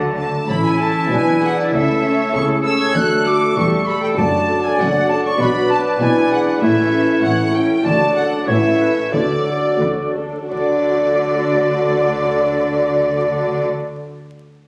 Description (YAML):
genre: quick classical-period movement for symphony orchestra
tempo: 85-99 BPM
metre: 2/4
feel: straight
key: A major, D major from 5.4 s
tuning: A4 = 440 Hz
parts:
  - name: clear clarinet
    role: second line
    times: 0.0-13.6 s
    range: F#4 to D5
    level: -27 LUFS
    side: equal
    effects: none
  - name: silver concert flute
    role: second line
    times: 0.0-13.6 s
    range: D5 to G#6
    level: -25 LUFS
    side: equal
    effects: none
  - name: warm oboe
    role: second line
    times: 0.0-13.6 s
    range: E4 to A5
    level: -26 LUFS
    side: equal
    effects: none
  - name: mellow bassoon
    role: accompaniment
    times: 0.0-13.6 s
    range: E3 to D4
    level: -28 LUFS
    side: equal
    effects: none
  - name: warm chamber viola section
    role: accompaniment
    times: 0.0-13.6 s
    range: F#3 to C#5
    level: -26 LUFS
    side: equal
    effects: none
  - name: warm French horn section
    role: sustained chords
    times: 0.0-13.6 s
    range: E3 to G4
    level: -24 LUFS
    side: equal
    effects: none
  - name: rich chamber cello section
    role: bass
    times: 0.0-13.6 s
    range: E2 to D3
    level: -26 LUFS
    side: equal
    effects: none
  - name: warm studio double bass section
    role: bass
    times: 0.0-13.6 s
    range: E1 to D2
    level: -29 LUFS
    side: equal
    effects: none
  - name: rich chamber violin section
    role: melody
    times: 0.2-13.6 s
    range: D5 to G#6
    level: -33 LUFS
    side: equal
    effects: none
  - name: rich chamber violin section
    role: second line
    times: 0.2-13.6 s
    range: D5 to G#6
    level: -29 LUFS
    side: equal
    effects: none
room: wet recital hall reverb, RT60 1.7 s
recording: recorded on a phone in the room, studio reverb, vinyl crackle, compression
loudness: -17 LUFS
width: mono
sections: 0.5-10.5 A section; 10.5-13.3 B section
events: slowing down 7.2-10.5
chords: 0.5 A; 1.1 E7/B; 1.7 A/C#; 3.0 D; 3.6 A7/E; 4.2 D/F#; 5.4 Bm; 6.0 E7/B; 6.6 A; 7.8 D; 8.5 A; 9.1 D